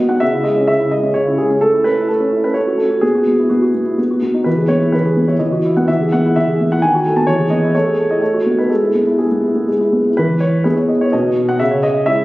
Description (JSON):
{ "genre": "classical-period piano sonatina", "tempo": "127 BPM", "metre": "3/4", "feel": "rubato", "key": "E major", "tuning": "A4 = 440 Hz", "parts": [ { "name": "warm grand piano", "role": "solo", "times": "0.0-12.2 s", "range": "B2 to A5", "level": "-13 LUFS", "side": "equal", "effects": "none" } ], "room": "moderate recital hall reverb, RT60 1.4 s", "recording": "recorded on a phone in the room, club reverb", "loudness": "-13 LUFS", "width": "side -18 dB against mid", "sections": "0.0-10.2 A section; 10.2-12.2 A section", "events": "none", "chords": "0.2 C#m; 1.6 A; 2.6 F#m/A; 3.0 Bsus4; 4.0 B; 4.5 E; 5.4 B/E; 5.9 E; 6.8 B7/D#; 7.3 E; 7.7 Amaj7; 8.2 B7/A; 8.7 E/G#; 10.2 E; 11.1 B; 11.6 C#m" }